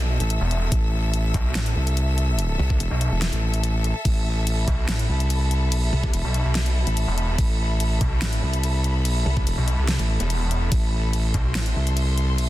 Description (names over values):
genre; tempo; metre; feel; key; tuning
heavy wobble dubstep; 144 BPM; 4/4; half-time; A minor; A4 = 440 Hz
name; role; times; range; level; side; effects
snarling distorted saw bass; bass; 0.0-11.7 s; E1 to C2; -22 LUFS; equal; distortion, overdrive
clear studio string section; texture; 0.0-12.5 s; A4 to E6; -30 LUFS; left 2 dB; sidechain pumping
wobble bass; bass; 0.2-12.5 s; E1 to C2; -22 LUFS; equal; chorus, overdrive
dubstep drum kit; drums; 0.2-12.5 s; crash cymbal, hi-hat, snare drum; -30 LUFS; equal; overdrive
electronic kick drum; drums; 0.7-11.4 s; none; -22 LUFS; equal; overdrive
room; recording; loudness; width
little or no reverb; dense, heavily limited modern master; -20 LUFS; side -15 dB against mid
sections
0.0-12.5 A section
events
none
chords
0.0 Am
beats
0.30 | 0.72 1.13 1.55 1.97 | 2.38 2.80 3.22 3.63 | 4.05 4.47 4.88 5.30 | 5.72 6.13 6.55 6.97 | 7.38 7.80 8.22 8.63 | 9.05 9.47 9.88 10.30 | 10.72 11.13 11.55 11.97 | 12.38